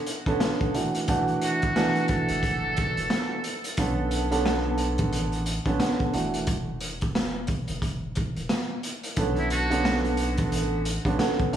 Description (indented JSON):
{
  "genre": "hip hop, boom-bap hip-hop",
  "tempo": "89 BPM",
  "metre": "4/4",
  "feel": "swing 59% on 16ths",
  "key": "B minor",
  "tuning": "A4 = 440 Hz",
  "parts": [
    { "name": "raw garage drum kit", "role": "drums", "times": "0.1-11.6 s", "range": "hi-hat, kick drum, rim click, snare drum", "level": "-28 LUFS", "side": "equal", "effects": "none" },
    { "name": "dark upright piano", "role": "accompaniment", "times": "0.3-11.6 s", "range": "D3 to A4", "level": "-27 LUFS", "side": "right 2 dB", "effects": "high-pass filter, low-pass filter" },
    { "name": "trumpet with metal mute", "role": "melody", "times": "1.4-3.7, 9.4-10.0 s", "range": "E4 to A4", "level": "-31 LUFS", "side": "equal", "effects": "high-pass filter, low-pass filter, diffuse ambient delay" },
    { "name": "soft dub sub bass", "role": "bass", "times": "2.3-11.6 s", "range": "E1 to B1", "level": "-31 LUFS", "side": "equal", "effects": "none" }
  ],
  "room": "moderate plate reverb, RT60 2.3 s",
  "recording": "dreamy mix soaked in reverb, vinyl crackle, studio reverb",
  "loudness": "-24 LUFS",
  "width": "side -10 dB against mid",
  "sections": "0.0-11.6 A section",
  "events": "break 0.0-1.1, 6.5-9.2",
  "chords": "0.0 Bm9; 0.7 E9sus4; 3.8 Bm9; 6.1 Esus2; 9.2 Bm9",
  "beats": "0.41 | 1.08 1.76 2.43 3.11 | 3.78 4.45 5.13 5.80 | 6.48 7.15 7.83 8.50 | 9.17 9.85 10.52 11.20"
}